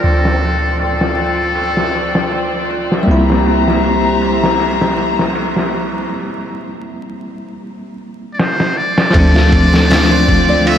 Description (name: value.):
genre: trip hop.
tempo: 79 BPM.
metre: 4/4.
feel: swing 55% on 16ths.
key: D minor.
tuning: A4 = 438 Hz.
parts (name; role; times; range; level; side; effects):
trumpet with metal mute; melody; 0.0-2.7, 8.3-10.8 s; A4 to E5; -18 LUFS; left 1 dB; vintage 12-bit sampler grit, tape echo.
bell-like tine electric piano; accompaniment; 0.0-10.8 s; F3 to E4; -18 LUFS; equal; harmonic tremolo, tape echo.
rich chamber string section; sustained chords; 0.0-10.8 s; D3 to Bb5; -19 LUFS; left 2 dB; low-pass filter.
soft 808-style bass; bass; 0.0-10.8 s; C2 to D2; -17 LUFS; equal; none.
trip hop sampler-style drum kit; drums; 0.0-10.8 s; hi-hat, kick drum, ride cymbal, snare drum; -18 LUFS; equal; low-pass filter on snare, low-pass filter on kick, low-pass filter on cymbals, low-pass filter on hats, low-pass filter on room.
downlifter; sound effects; 0.0-3.1 s; none; -35 LUFS; equal; none.
nylon-string guitar; arpeggios; 9.1-10.8 s; C4 to D5; -20 LUFS; equal; ping-pong delay.
room: wet huge ambient reverb, RT60 5.9 s.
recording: dreamy mix soaked in reverb, vinyl crackle.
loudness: -12 LUFS.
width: side -9 dB against mid.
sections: 0.0-9.1 A section; 9.1-10.8 B section.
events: break 6.1-9.1; drum fill 8.4-9.1.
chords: 0.0 Dm7; 3.1 C7; 9.1 Dm7.